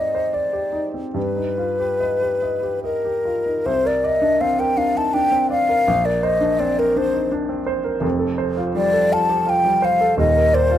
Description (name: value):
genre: classical, impressionist duo for flute and grand piano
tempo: 70-88 BPM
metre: 3/4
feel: rubato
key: C dorian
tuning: A4 = 441 Hz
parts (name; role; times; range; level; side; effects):
- mellow hollow concert flute; melody; 0.0-10.8 s; Bb4 to A5; -18 LUFS; left 2 dB; none
- warm baby grand piano; accompaniment; 0.0-10.8 s; Eb1 to D#5; -22 LUFS; right 2 dB; none
room: light reverb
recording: close, detailed microphones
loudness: -17 LUFS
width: side -11 dB against mid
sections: 0.0-3.7 A section; 3.7-10.8 B section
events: none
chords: 0.0 Abmaj7#11; 1.2 Gaug7; 3.7 Cm9; 5.9 Bbadd9; 8.0 Fadd9; 10.2 Ebmaj7sus2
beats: 0.34 | 1.16 2.01 2.84 | 3.65 4.41 5.13 | 5.87 6.59 7.32 | 8.04 8.76 9.48 | 10.20